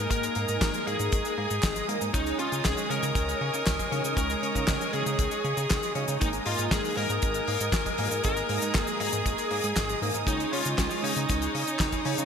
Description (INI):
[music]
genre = italo disco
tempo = 118 BPM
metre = 4/4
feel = straight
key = unclear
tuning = A4 = 440 Hz
[part]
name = bluesy overdriven lead guitar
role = melody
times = 0.0-12.2 s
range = Eb4 to Bb4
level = -30 LUFS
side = left 1 dB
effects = distortion, digital delay
[part]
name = clear studio string section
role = sustained chords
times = 0.0-12.2 s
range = Bb4 to Eb6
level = -34 LUFS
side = right 3 dB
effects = none
[part]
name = direct-recorded clean electric guitar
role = arpeggios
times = 0.0-12.2 s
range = Eb3 to Eb4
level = -38 LUFS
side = left 4 dB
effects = ping-pong delay
[part]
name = mellow synth brass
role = stabs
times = 0.0-12.2 s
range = Ab3 to Db5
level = -34 LUFS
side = right 2 dB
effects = chorus, phaser
[part]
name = chorused synth bass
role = bass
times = 0.0-12.2 s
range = Ab1 to Db3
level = -33 LUFS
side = equal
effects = none
[part]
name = damped 70s drum kit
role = drums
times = 0.1-12.2 s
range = cabasa, handclaps, hi-hat, snare drum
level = -32 LUFS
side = left 2 dB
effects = studio reverb, gated reverb
[part]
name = kick drum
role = drums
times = 0.1-12.0 s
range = none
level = -30 LUFS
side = equal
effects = studio reverb
[sound]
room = moderate lush hall reverb, RT60 2.4 s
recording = bright 1980s-style digital production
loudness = -25 LUFS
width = side -7 dB against mid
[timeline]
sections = 0.0-12.2 A section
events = none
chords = 0.0 Absus2; 2.1 Dbsus2; 6.2 Absus2; 10.3 Dbsus2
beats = | 0.11 0.61 1.12 1.63 | 2.14 2.65 3.16 3.67 | 4.17 4.68 5.19 5.70 | 6.21 6.72 7.22 7.73 | 8.24 8.75 9.26 9.77 | 10.28 10.78 11.29 11.80